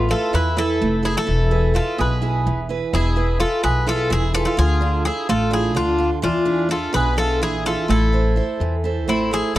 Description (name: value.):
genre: greek folk, Greek bouzouki band.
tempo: 254 BPM (eighths).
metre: 7/8.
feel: straight.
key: A harmonic minor.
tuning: A4 = 439 Hz.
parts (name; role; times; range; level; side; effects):
Greek bouzouki; melody; 0.0-9.6 s; E4 to B4; -22 LUFS; left 3 dB; none.
Greek bouzouki; second line; 0.0-9.6 s; C4 to G#4; -26 LUFS; right 2 dB; none.
picked steel-string acoustic guitar; accompaniment; 0.0-9.6 s; B2 to C5; -24 LUFS; right 5 dB; none.
upright bass; bass; 0.0-9.6 s; E1 to E2; -21 LUFS; left 1 dB; none.
room: little or no reverb.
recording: dry, close 1970s-style studio recording.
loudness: -17 LUFS.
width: side -15 dB against mid.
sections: 0.0-9.5 A section.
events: none.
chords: 0.0 Asus2; 1.3 E; 4.6 Dm; 6.2 E7; 7.9 Am.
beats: 0.10 0.34 0.57 0.81 1.04 | 1.28 1.52 1.75 1.99 2.22 2.46 2.69 | 2.93 3.17 3.40 3.64 3.88 4.11 4.35 | 4.58 4.82 5.06 5.29 5.53 5.76 6.00 | 6.24 6.47 6.71 6.95 7.18 7.42 7.66 | 7.89 8.13 8.36 8.60 8.84 9.07 9.31 | 9.55.